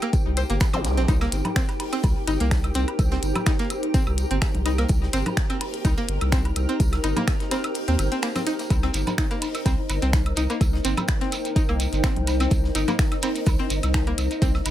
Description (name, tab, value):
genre	minimal techno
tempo	126 BPM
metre	4/4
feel	swing 54% on 16ths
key	C minor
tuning	A4 = 442 Hz
part	string-like resonator pluck	riff	0.0-14.5 s	Bb3 to C5	-29 LUFS	equal	chorus, sidechain pumping, ping-pong delay
part	minimal click drum kit	drums	0.0-14.7 s	finger snaps, hi-hat	-29 LUFS	left 1 dB	none
part	woodblock and congas	percussion	0.0-14.7 s	none	-32 LUFS	right 1 dB	ping-pong delay
part	flickering grainy texture	texture	0.0-14.7 s	Eb4 to G4	-36 LUFS	left 2 dB	built-in reverb, sidechain pumping
part	granular cloud pad	texture	0.0-14.7 s	Eb4 to Bb5	-30 LUFS	equal	built-in reverb, sidechain pumping
part	big rock drum kit	drums	0.1-14.7 s	hi-hat, snare drum, tambourine	-41 LUFS	equal	sidechain pumping on hats, high-pass filter on hats, high-pass filter on snare, sidechain pumping on perc, high-pass filter on perc, high-pass filter on room
part	electronic kick drum	drums	0.1-14.5 s	none	-22 LUFS	equal	none
part	saturated sub bass	bass	0.3-14.7 s	G1 to Eb2	-24 LUFS	equal	tube saturation, sidechain pumping
part	zap	sound effects	0.7-0.8 s	none	-32 LUFS	left 1 dB	none
part	shekere	percussion	8.7-14.7 s	none	-35 LUFS	right 4 dB	none
room	light reverb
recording	none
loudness	-20 LUFS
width	side -12 dB against mid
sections	0.0-14.7 A section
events	kick drops out 7.8-8.7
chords	0.0 Cm7